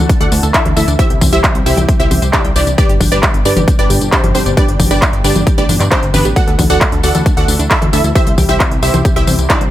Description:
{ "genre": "uplifting trance", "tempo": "134 BPM", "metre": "4/4", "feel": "straight", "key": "G major", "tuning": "A4 = 440 Hz", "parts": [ { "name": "wide unison pluck", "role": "melody", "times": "0.0-9.6 s", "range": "B3 to F#5", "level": "-19 LUFS", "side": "right 1 dB", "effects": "lush chorus, sidechain pumping, digital delay" }, { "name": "wide unison pluck", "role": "second line", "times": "0.0-9.6 s", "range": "B4 to F#5", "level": "-21 LUFS", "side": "right 1 dB", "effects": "sidechain pumping, digital delay" }, { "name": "analog string pad", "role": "sustained chords", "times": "0.0-9.7 s", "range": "B2 to A4", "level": "-23 LUFS", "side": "equal", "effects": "ensemble chorus, sidechain pumping" }, { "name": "plucky analog bass", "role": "bass", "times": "0.0-9.7 s", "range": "G1 to G2", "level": "-16 LUFS", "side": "equal", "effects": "sidechain pumping" }, { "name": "wide unison pluck", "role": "arpeggios", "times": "0.1-9.7 s", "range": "A3 to G5", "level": "-25 LUFS", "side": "right 2 dB", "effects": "sidechain pumping, digital delay" }, { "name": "big-room dance drum kit", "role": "drums", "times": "0.1-9.7 s", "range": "congas, handclaps, hi-hat, tambourine", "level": "-16 LUFS", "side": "left 1 dB", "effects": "overdrive, sidechain pumping on hats, sidechain pumping on perc, sidechain pumping on cymbals" }, { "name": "electronic kick drum", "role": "drums", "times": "0.1-9.6 s", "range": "none", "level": "-13 LUFS", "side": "equal", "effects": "overdrive" } ], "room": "digital ambience", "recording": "none", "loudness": "-9 LUFS", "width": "side -13 dB against mid", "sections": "0.0-9.7 A section", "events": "none", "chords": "0.0 Dsus2; 1.0 C; 2.8 G; 6.4 Dsus2; 8.2 C" }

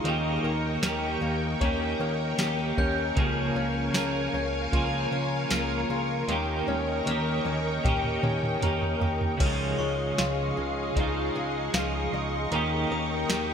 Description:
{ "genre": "dream pop", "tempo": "77 BPM", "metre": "4/4", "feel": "straight", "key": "Db lydian", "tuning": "A4 = 441 Hz", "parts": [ { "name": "clean electric guitar", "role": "accompaniment", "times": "0.0-13.5 s", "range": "Db3 to Ab4", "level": "-31 LUFS", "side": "right 1 dB", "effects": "tremolo, wide subtle chorus" }, { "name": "soft string machine", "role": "sustained chords", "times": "0.0-13.5 s", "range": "Ab4 to Db6", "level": "-32 LUFS", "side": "equal", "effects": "ensemble chorus" }, { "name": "fingerpicked twelve-string acoustic guitar", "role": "arpeggios", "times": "0.0-13.5 s", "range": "Db3 to Bb4", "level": "-31 LUFS", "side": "left 3 dB", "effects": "analog chorus, digital delay" }, { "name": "fat analog bass", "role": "bass", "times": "0.0-13.5 s", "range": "Db2 to Eb2", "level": "-33 LUFS", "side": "equal", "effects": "none" }, { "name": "soft vintage rhythm box", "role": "drums", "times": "0.1-13.5 s", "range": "crash cymbal, hi-hat, kick drum, snare drum, tambourine, toms", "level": "-30 LUFS", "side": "equal", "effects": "gated reverb" }, { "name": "glockenspiel with hard plastic mallets", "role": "texture", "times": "2.8-13.5 s", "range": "Db6 to Ab6", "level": "-40 LUFS", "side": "right 1 dB", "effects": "digital delay" } ], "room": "moderate lush hall reverb, RT60 2.6 s", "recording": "bright 1980s-style digital production", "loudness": "-25 LUFS", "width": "side -7 dB against mid", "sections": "0.0-9.4 A section; 9.4-13.5 B section", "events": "drum fill 6.3-9.4", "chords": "0.1 Eb7; 3.2 Bbm7/Db; 6.3 Eb7; 9.4 Dbadd9; 12.5 Eb7" }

